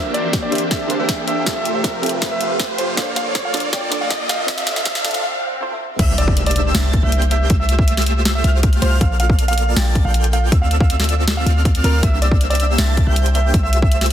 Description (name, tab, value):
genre	future bass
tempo	159 BPM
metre	4/4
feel	half-time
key	F major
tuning	A4 = 443 Hz
part	clear grand piano	melody	0.0-14.0 s	Bb4 to G5	-25 LUFS	right 2 dB	sidechain pumping, digital delay
part	soft round pluck	accompaniment	0.0-6.0 s	Bb3 to E5	-28 LUFS	right 2 dB	wide subtle chorus, sidechain pumping, dub echo
part	airy breathy pad	sustained chords	0.0-5.2 s	C3 to G5	-32 LUFS	left 1 dB	chorus, sidechain pumping
part	supersaw chords	riff	0.0-14.1 s	A3 to A5	-24 LUFS	right 1 dB	phaser, sidechain pumping, low-pass filter
part	riser, swell and impact	sound effects	0.0-7.5 s	none	-25 LUFS	equal	none
part	trap drum kit	drums	0.1-14.1 s	crash cymbal, hi-hat, snare drum	-23 LUFS	equal	high-pass filter on hats, high-pass filter on snare, high-pass filter on cymbals, high-pass filter on room
part	electronic kick drum	drums	0.3-13.9 s	none	-17 LUFS	equal	none
part	airy dreamy lead	arpeggios	6.0-14.1 s	E6 to A6	-26 LUFS	equal	chorus, sidechain pumping, dub echo
part	warm 808-style bass	bass	6.0-14.1 s	Bb1 to D2	-17 LUFS	equal	sidechain pumping
room	light reverb, digital ambience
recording	dense, heavily limited modern master, high-pass filter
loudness	-15 LUFS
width	side -10 dB against mid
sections	0.0-6.0 A section; 6.0-14.1 B section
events	build-up 0.0-6.0; drum fill 0.0-5.2; riser 0.0-5.2; break 5.2-6.0; swell 5.2-6.0; drop 6.0-14.1; impact 6.0-7.5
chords	0.0 C9; 1.5 Fmaj9/C; 3.0 Bbmaj7; 4.5 Dm9; 6.0 C9; 7.5 Fmaj9/C; 9.0 Bbmaj7; 10.5 Dm9; 12.0 C9; 13.5 Fmaj9/C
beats	0.33 0.71 1.09 | 1.46 1.84 2.22 2.60 | 2.97 3.35 3.73 4.11 | 4.48 4.86 5.24 5.61 | 5.99 6.37 6.75 7.12 | 7.50 7.88 8.26 8.63 | 9.01 9.39 9.77 10.14 | 10.52 10.90 11.28 11.65 | 12.03 12.41 12.78 13.16 | 13.54 13.92